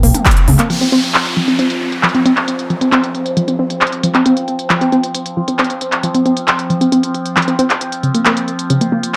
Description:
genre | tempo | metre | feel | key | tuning
driving peak-time techno | 135 BPM | 4/4 | straight | unclear | A4 = 440 Hz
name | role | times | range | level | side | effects
warbly dusty pluck | riff | 0.0-9.0 s | Db3 to C4 | -17 LUFS | equal | chorus, overdrive, sidechain pumping, tape echo
growling FM bass | bass | 0.0-0.6 s | B1 to Db2 | -15 LUFS | equal | sidechain pumping
overtone-sweeping drone | drone | 0.0-9.2 s | F3 to C4 | -24 LUFS | equal | chorus, built-in reverb, phaser, sidechain pumping
techno drum kit | drums | 0.0-9.1 s | handclaps, hi-hat, toms | -18 LUFS | equal | sidechain pumping on hats, low-pass filter on hats, sidechain pumping on toms, low-pass filter on toms, low-pass filter on snare, low-pass filter on room
downlifter | sound effects | 0.7-4.3 s | none | -25 LUFS | equal | none
room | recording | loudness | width
wet stone room reverb, RT60 1.0 s | none | -15 LUFS | mono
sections
0.7-9.2 A section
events
band accent 0.3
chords
0.0 N.C.; 0.7 F5; 7.8 Dbmaj7 (rootless)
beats
0.26 | 0.70 1.15 1.59 2.03 | 2.48 2.92 3.37 3.81 | 4.26 4.70 5.14 5.59 | 6.03 6.48 6.92 7.37 | 7.81 8.26 8.70 9.14

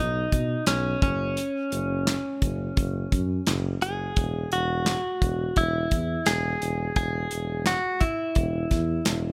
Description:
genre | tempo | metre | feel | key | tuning
piano-driven pop | 86 BPM | 4/4 | swing 56% on 16ths | unclear | A4 = 438 Hz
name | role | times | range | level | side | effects
direct-recorded clean electric guitar | melody | 0.0-9.3 s | C#4 to G#4 | -30 LUFS | equal | none
mellow tuba | bass | 0.0-9.3 s | E1 to B2 | -31 LUFS | equal | none
natural country drum kit | drums | 0.3-9.2 s | handclaps, hi-hat, kick drum, snare drum | -28 LUFS | equal | none
room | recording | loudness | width
light reverb, small room ambience | none | -26 LUFS | mono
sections
0.0-9.3 A section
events
none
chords
0.0 B; 1.0 F#5; 4.2 E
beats
0.67 | 1.37 2.07 2.77 3.47 | 4.17 4.87 5.57 6.27 | 6.96 7.67 8.36 9.06

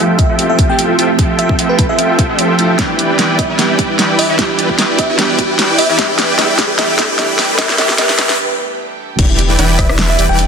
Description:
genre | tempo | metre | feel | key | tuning
future bass | 150 BPM | 4/4 | swing 53% on 16ths, half-time | E phrygian | A4 = 440 Hz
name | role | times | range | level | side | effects
glassy digital keys | accompaniment | 0.0-9.2 s | E3 to E5 | -21 LUFS | right 4 dB | chorus, sidechain pumping, digital delay
ethereal airy pad | sustained chords | 0.0-10.5 s | E3 to E5 | -23 LUFS | right 4 dB | ensemble chorus, built-in reverb, sidechain pumping
supersaw chords | riff | 0.0-10.5 s | E3 to G5 | -15 LUFS | equal | sidechain pumping, low-pass filter
riser and impact | sound effects | 0.2-10.5 s | none | -22 LUFS | left 1 dB | none
bell-like FM electric piano | melody | 0.2-10.4 s | B4 to G5 | -20 LUFS | equal | chorus, sidechain pumping, digital delay
electronic kick drum | drums | 0.2-9.9 s | none | -15 LUFS | equal | none
pop drum kit | drums | 0.2-10.5 s | crash cymbal, hi-hat, rim click, snare drum | -16 LUFS | equal | none
thumb-piano-like synth pluck | arpeggios | 9.2-10.4 s | D4 to B4 | -25 LUFS | right 5 dB | chorus, sidechain pumping, digital delay
saturated sub bass | bass | 9.2-10.5 s | E1 | -14 LUFS | left 1 dB | sidechain pumping
room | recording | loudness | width
moderate lush hall reverb, RT60 1.7 s, digital ambience | dense, heavily limited modern master, high-pass filter | -10 LUFS | side -6 dB against mid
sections
0.0-9.2 A section; 9.2-10.5 B section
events
build-up 0.0-9.2; filter sweep on supersaw synth 0.0-9.2; filter sweep 0.0-9.2; riser 0.2-8.4; drum fill 2.8-8.4; break 8.4-9.2; drop 9.2-10.5; impact 9.2-10.5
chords
0.0 Fmaj9; 2.8 Em7; 6.0 A5; 9.2 Em7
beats
0.39 0.79 | 1.19 1.59 1.99 2.39 | 2.79 3.19 3.59 3.99 | 4.39 4.79 5.19 5.59 | 5.99 6.39 6.79 7.19 | 7.59 7.99 8.39 8.79 | 9.19 9.59 9.99 10.39

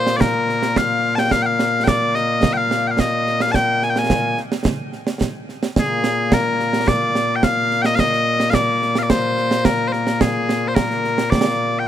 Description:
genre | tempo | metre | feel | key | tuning
scottish traditional, Scottish pipe music | 108 BPM | 4/4 | straight | Bb mixolydian | A4 = 440 Hz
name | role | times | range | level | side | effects
loud bright bagpipes | melody | 0.0-11.9 s | Bb2 to A5 | -18 LUFS | left 2 dB | none
concert snare drum and concert bass drum | drums | 0.1-11.4 s | none | -20 LUFS | right 3 dB | none
room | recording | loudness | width
light reverb | none | -16 LUFS | side -10 dB against mid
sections
0.0-10.2 A section; 10.2-11.9 A section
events
none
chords
none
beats
0.21 0.76 | 1.32 1.88 2.43 2.99 | 3.54 4.10 4.65 5.21 | 5.76 6.32 6.88 7.43 | 7.99 8.54 9.10 9.65 | 10.21 10.76 11.32 11.88

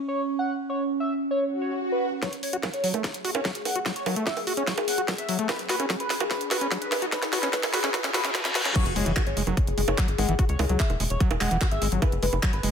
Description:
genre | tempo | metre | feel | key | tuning
psychedelic trance | 147 BPM | 4/4 | straight | unclear | A4 = 440 Hz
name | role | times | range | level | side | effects
evolving wavetable pad | sustained chords | 0.0-12.7 s | C#4 to G#4 | -32 LUFS | left 1 dB | phaser, built-in reverb, sidechain pumping
overdriven synth lead | melody | 0.1-12.7 s | B4 to F#5 | -31 LUFS | equal | chorus, phaser, sidechain pumping, tape echo
swell, riser, reverse cymbal and impact | sound effects | 1.5-10.4 s | none | -34 LUFS | left 1 dB | none
overdriven acid bass | riff | 2.2-12.7 s | E3 to F#4 | -31 LUFS | moving between left 6 dB and right 6 dB | distortion, auto-pan, cassette tape, sidechain pumping, tape echo
electronic kick drum | drums | 2.2-12.5 s | none | -25 LUFS | equal | high-pass filter on kick
garage drum kit | drums | 2.2-12.7 s | bongos, crash cymbal, handclaps, hi-hat, snare drum | -28 LUFS | right 2 dB | high-pass filter on snare, high-pass filter on hats, high-pass filter on perc, high-pass filter on cymbals
tight sequencer bass | bass | 8.9-12.7 s | E1 to C#2 | -27 LUFS | equal | none
room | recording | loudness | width
light reverb | high-pass filter | -23 LUFS | side -7 dB against mid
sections
0.0-2.2 A section; 2.2-8.8 B section; 8.8-12.7 C section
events
filter sweep on ambient pad 0.0-2.2, 2.2-8.8; swell 1.5-2.2; build-up 2.2-8.8; drum fill 2.2-8.8; riser 2.2-8.8; filter sweep on acid bass 2.2-8.8; reverse cymbal 7.9-8.8; drop 8.8-12.7; impact 8.8-10.4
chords
0.0 N.C.; 2.2 F#5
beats
0.18 | 0.59 1.00 1.41 1.82 | 2.23 2.63 3.04 3.45 | 3.86 4.27 4.67 5.08 | 5.49 5.90 6.31 6.71 | 7.12 7.53 7.94 8.35 | 8.76 9.16 9.57 9.98 | 10.39 10.80 11.21 11.61 | 12.02 12.43

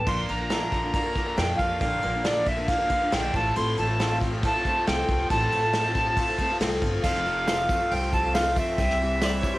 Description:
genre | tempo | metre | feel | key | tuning
folk rock and heartland rock | 138 BPM | 4/4 | straight | unclear | A4 = 441 Hz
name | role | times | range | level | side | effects
accordion | melody | 0.0-9.6 s | D5 to C6 | -26 LUFS | equal | cassette tape
picked twelve-string acoustic guitar | accompaniment | 0.0-9.6 s | F2 to Bb4 | -31 LUFS | left 2 dB | cassette tape
upright bass | bass | 0.0-9.4 s | F1 to F2 | -30 LUFS | equal | none
bright grand piano | accompaniment | 0.1-9.5 s | E4 to G5 | -39 LUFS | right 3 dB | none
raw garage guitar | riff | 0.1-9.6 s | F2 to F4 | -34 LUFS | equal | overdrive, cassette tape
soft brush drum kit | drums | 0.1-9.5 s | crash cymbal, hi-hat, kick drum, ride cymbal, snare drum | -28 LUFS | equal | cassette tape
tambourine | percussion | 7.0-9.5 s | none | -45 LUFS | right 5 dB | none
twelve-string electric guitar | second line | 9.3-9.6 s | C5 to D5 | -36 LUFS | left 1 dB | harmonic tremolo, cassette tape, tape echo
room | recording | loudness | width
light reverb | home recording on cassette | -22 LUFS | side -18 dB against mid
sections
0.1-7.0 A section; 7.0-9.6 B section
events
none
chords
0.1 Bb; 3.3 F/A; 7.0 F; 8.8 C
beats
| 0.08 0.51 0.95 1.38 | 1.82 2.25 2.69 3.12 | 3.56 4.00 4.43 4.87 | 5.30 5.74 6.17 6.61 | 7.04 7.48 7.91 8.35 | 8.78 9.22

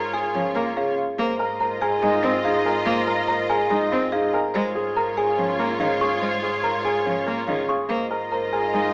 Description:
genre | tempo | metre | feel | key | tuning
classical, minimalist pattern music | 143 BPM | 4/4 | straight | unclear | A4 = 438 Hz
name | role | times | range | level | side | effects
marimba with medium hard mallets | melody | 0.0-8.9 s | Ab4 to Ab5 | -29 LUFS | equal | none
rich symphonic string section | sustained chords | 0.0-8.9 s | F4 to Eb5 | -30 LUFS | equal | none
small celesta | arpeggios | 0.0-8.8 s | F5 to Db6 | -30 LUFS | equal | none
warm grand piano | arpeggios | 0.0-8.9 s | Db4 to C5 | -28 LUFS | equal | none
rich double bass | bass | 0.0-8.9 s | Ab2 | -40 LUFS | equal | none
rich cello | accompaniment | 0.3-8.9 s | Eb3 to C4 | -30 LUFS | equal | none
room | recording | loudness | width
moderate recital hall reverb, RT60 1.7 s | small speaker sound | -23 LUFS | mono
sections
0.0-8.9 A section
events
none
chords
0.0 Db6/Ab; 1.2 Fm7/Ab; 4.5 Db6/Ab; 7.9 Fm7/Ab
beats
0.35 0.77 | 1.19 1.60 2.02 2.44 | 2.86 3.28 3.70 4.12 | 4.54 4.96 5.38 5.80 | 6.22 6.64 7.06 7.48 | 7.90 8.32 8.74

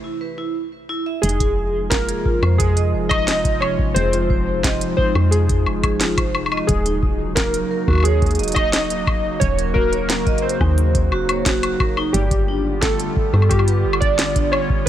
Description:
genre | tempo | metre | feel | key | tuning
IDM | 88 BPM | 4/4 | straight | F phrygian | A4 = 440 Hz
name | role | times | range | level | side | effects
vibraphone with medium hard mallets | arpeggios | 0.0-14.5 s | D4 to E5 | -27 LUFS | right 2 dB | vintage 12-bit sampler grit, digital delay
warbly lo-fi synth keys | melody | 1.2-14.9 s | G4 to Eb5 | -22 LUFS | equal | chorus, digital delay
warbly tape-like pad | sustained chords | 1.6-14.9 s | C3 to G4 | -26 LUFS | equal | chorus, built-in reverb
woody FM bass | bass | 1.2-14.8 s | Eb1 to G2 | -21 LUFS | equal | none
organic electronic drum kit | drums | 1.2-14.7 s | hi-hat, snare drum, woodblock | -23 LUFS | left 1 dB | none
electronic kick drum | drums | 1.4-14.8 s | none | -22 LUFS | equal | none
room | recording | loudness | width
little or no reverb | faint mains hum | -16 LUFS | side -11 dB against mid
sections
0.0-1.2 A section; 1.2-14.9 B section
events
break 0.0-1.2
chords
0.0 N.C.; 1.2 Fm7; 6.7 Ebm7; 12.1 G7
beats
0.55 | 1.23 1.92 2.60 3.28 | 3.96 4.64 5.32 6.01 | 6.69 7.37 8.05 8.73 | 9.41 10.10 10.78 11.46 | 12.14 12.82 13.51 14.19 | 14.87

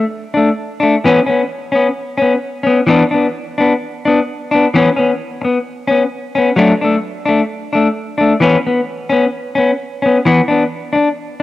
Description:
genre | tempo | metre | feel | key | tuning
highlife | 130 BPM | 4/4 | straight | unclear | A4 = 440 Hz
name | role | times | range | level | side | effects
clean electric guitar | solo | 0.0-11.4 s | E3 to D4 | -12 LUFS | left 2 dB | warbly pitch drift, cassette tape
room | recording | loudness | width
light reverb, digital ambience | home recording on cassette | -12 LUFS | side -15 dB against mid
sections
0.0-11.4 A section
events
none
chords
0.0 D5; 1.0 C#7(no3); 2.9 Bm; 4.7 C#7(no3); 6.6 D5; 8.4 C#7(no3); 10.3 Bmadd11/E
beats
0.11 0.57 | 1.04 1.50 1.96 2.42 | 2.88 3.35 3.81 4.27 | 4.73 5.19 5.65 6.11 | 6.57 7.03 7.49 7.95 | 8.41 8.88 9.34 9.80 | 10.26 10.72 11.18

